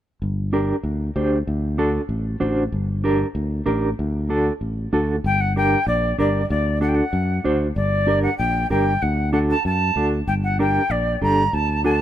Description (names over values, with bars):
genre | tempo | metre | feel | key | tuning
latin, cumbia | 191 BPM | 4/4 | straight | G harmonic minor | A4 = 440 Hz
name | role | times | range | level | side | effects
fingered electric bass | bass | 0.2-12.0 s | G1 to F#2 | -22 LUFS | equal | none
mellow electric guitar | accompaniment | 0.5-12.0 s | D4 to C5 | -23 LUFS | right 1 dB | tremolo
jazz flute | melody | 5.3-12.0 s | D5 to Bb5 | -22 LUFS | equal | none
room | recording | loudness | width
little or no reverb | minimal, uncompressed stereo recording | -18 LUFS | side -11 dB against mid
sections
0.2-5.2 A section; 5.2-12.0 B section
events
none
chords
0.2 Gm; 1.5 D7; 2.7 Gm; 4.0 D; 5.2 Gm; 6.5 D7; 7.8 Gm; 9.0 D; 10.3 Gm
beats
| 0.21 0.53 0.84 1.16 | 1.47 1.79 2.10 2.42 | 2.73 3.04 3.36 3.67 | 3.99 4.30 4.62 4.93 | 5.24 5.56 5.87 6.19 | 6.50 6.82 7.13 7.44 | 7.76 8.07 8.38 8.70 | 9.01 9.33 9.64 9.96 | 10.27 10.59 10.90 11.21 | 11.53 11.84